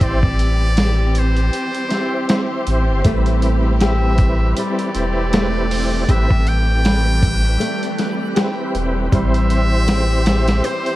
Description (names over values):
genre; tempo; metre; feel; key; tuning
trip hop; 79 BPM; 4/4; swing 57% on 16ths; A dorian; A4 = 440 Hz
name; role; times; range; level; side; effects
trumpet with metal mute; melody; 0.0-11.0 s; C5 to G5; -25 LUFS; equal; tape echo
tonewheel organ; accompaniment; 0.0-11.0 s; G3 to D5; -23 LUFS; equal; chorus vibrato, tremolo
clear studio string section; sustained chords; 0.0-11.0 s; E3 to G4; -26 LUFS; equal; none
warm sub bass; bass; 0.0-10.6 s; E1 to A1; -17 LUFS; equal; none
dusty soul sampler-style drum kit; drums; 0.0-11.0 s; hi-hat, kick drum, snare drum; -19 LUFS; equal; none
backwards swelling texture; texture; 4.5-11.0 s; G3 to F#6; -30 LUFS; equal; none
nylon-string guitar; arpeggios; 3.1-11.0 s; G3 to C5; -25 LUFS; left 1 dB; ping-pong delay
room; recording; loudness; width
small room ambience; vinyl crackle; -15 LUFS; side -16 dB against mid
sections
0.0-11.0 A section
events
none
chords
0.0 C; 3.0 Am7; 9.1 C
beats
| 0.01 0.77 1.53 2.29 | 3.05 3.81 4.57 5.33 | 6.09 6.84 7.61 8.36 | 9.12 9.88 10.64